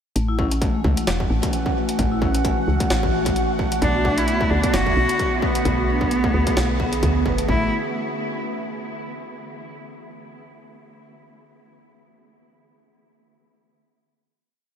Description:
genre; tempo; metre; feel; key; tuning
IDM; 131 BPM; 4/4; swing 56% on 16ths; A major; A4 = 440 Hz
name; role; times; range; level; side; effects
warbly tape-like pad; sustained chords; 0.6-7.7 s; D3 to G#4; -27 LUFS; right 1 dB; chorus, built-in reverb, vintage 12-bit sampler grit, sidechain pumping
vibraphone with medium mallets; arpeggios; 0.2-7.7 s; G#3 to B4; -28 LUFS; left 2 dB; tape echo
woody FM bass; bass; 0.2-7.7 s; E1 to D2; -23 LUFS; equal; tube saturation
jungle sampler-style drum kit; drums; 0.2-7.5 s; hi-hat, snare drum; -30 LUFS; equal; small room ambience, ping-pong delay
bubbling stepped-filter texture; texture; 0.2-7.5 s; F#5; -32 LUFS; right 5 dB; chorus, built-in reverb
electronic kick drum; drums; 0.4-7.6 s; none; -25 LUFS; equal; distortion, small room ambience
clear cello; melody; 3.8-7.7 s; B3 to F#4; -25 LUFS; equal; diffuse ambient delay
room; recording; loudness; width
moderate huge ambient reverb, RT60 7.8 s; dreamy mix soaked in reverb; -18 LUFS; side -8 dB against mid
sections
0.2-7.5 groove; 7.5-9.3 final chord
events
none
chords
0.2 A6; 3.8 Bm7; 7.5 A6

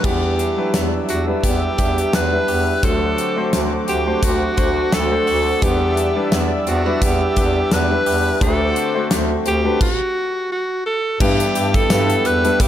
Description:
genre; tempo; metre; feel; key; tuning
1980s-style pop; 86 BPM; 4/4; swing 55% on 16ths; unclear; A4 = 442 Hz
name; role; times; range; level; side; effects
bright alto saxophone; melody; 0.0-12.7 s; F#4 to B4; -20 LUFS; equal; none
clear baby grand piano; accompaniment; 0.0-12.7 s; G2 to C5; -22 LUFS; left 3 dB; none
brassy analog pad; sustained chords; 0.0-12.7 s; B4 to E6; -28 LUFS; equal; chorus
direct-recorded clean electric guitar; riff; 0.0-12.7 s; E3 to G4; -28 LUFS; right 7 dB; lush chorus, digital delay
warm bass clarinet; bass; 0.0-12.7 s; D2 to G2; -22 LUFS; equal; none
gated 80s drum kit; drums; 0.0-12.7 s; crash cymbal, hi-hat, kick drum, snare drum, tambourine; -21 LUFS; equal; none
room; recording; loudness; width
moderate lush hall reverb, RT60 2.7 s; faint mains hum; -16 LUFS; side -11 dB against mid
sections
0.0-11.2 A section; 11.2-12.7 B section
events
stop 9.8-11.2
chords
0.0 Em7; 2.8 D7; 5.6 Em7; 8.4 D7; 11.2 G6

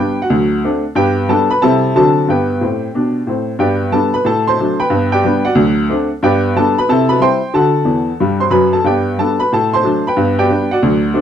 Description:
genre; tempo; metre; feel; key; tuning
jazz, stride piano; 183 BPM; 4/4; swing 66% on 8ths; G major; A4 = 439 Hz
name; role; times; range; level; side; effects
clear upright piano; solo; 0.0-11.2 s; D2 to C6; -12 LUFS; equal; none
room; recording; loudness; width
light reverb; none; -12 LUFS; side -9 dB against mid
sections
0.0-3.6 A section; 3.6-11.2 A section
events
upright piano fill 7.9-8.8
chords
0.3 D7; 1.0 G; 1.6 C; 1.9 D7; 2.3 G; 4.2 D7/A; 4.9 G; 5.6 D7; 6.2 G; 6.9 C; 7.5 D; 8.8 G; 9.5 D7/A; 10.2 G

